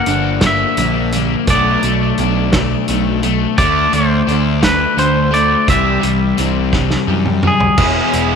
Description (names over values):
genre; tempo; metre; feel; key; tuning
indie rock; 57 BPM (dotted quarters); 6/8; straight; D mixolydian; A4 = 439 Hz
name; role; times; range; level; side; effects
twangy electric guitar; melody; 0.0-8.4 s; G#4 to F#5; -17 LUFS; equal; spring reverb, tape echo
crunchy overdriven guitar; riff; 0.0-8.4 s; G3 to G#4; -18 LUFS; left 12 dB; none
crunchy overdriven guitar; riff; 0.0-8.4 s; E2 to E4; -20 LUFS; right 14 dB; wide subtle chorus
fuzz picked electric bass; bass; 0.1-8.3 s; E1 to F#2; -19 LUFS; right 1 dB; overdrive
loose indie drum kit; drums; 0.1-8.3 s; crash cymbal, hi-hat, kick drum, snare drum, toms; -18 LUFS; right 1 dB; none
room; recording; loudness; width
light reverb; 1960s-style stereo with parts hard left and right; -12 LUFS; side -6 dB against mid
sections
0.0-7.8 A section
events
drum fill 6.7-7.8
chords
0.0 Gm; 1.5 Bm7; 3.6 D5; 5.7 C; 7.8 E